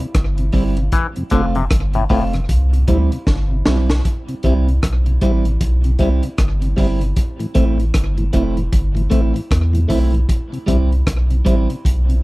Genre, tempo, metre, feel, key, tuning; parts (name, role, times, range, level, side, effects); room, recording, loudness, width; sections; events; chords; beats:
roots reggae; 77 BPM; 4/4; swing 61% on 16ths; C major; A4 = 440 Hz
electric guitar at the edge of break-up; accompaniment; 0.0-11.7 s; G3 to F4; -24 LUFS; right 3 dB; spring reverb, dub echo
mellow tonewheel organ; accompaniment; 0.0-12.1 s; F2 to F4; -22 LUFS; left 1 dB; slow rotary speaker
crunchy breakbeat drum kit; drums; 0.0-12.2 s; hi-hat, kick drum, rim click, snare drum; -18 LUFS; equal
warm sub bass; bass; 0.2-12.2 s; F1 to E2; -17 LUFS; equal
clav; arpeggios; 0.9-2.2 s; A2 to E3; -21 LUFS; left 5 dB
little or no reverb; dry, close 1970s-style studio recording, lossy compression artefacts; -14 LUFS; side -20 dB against mid
0.0-4.0 A section; 4.0-12.2 B section
drum fill 3.3-4.0
0.0 C; 0.9 F; 2.5 C; 7.2 Am; 10.3 C
0.15 | 0.93 1.71 2.49 3.27 | 4.05 4.83 5.61 6.39 | 7.17 7.95 8.73 9.51 | 10.29 11.07 11.85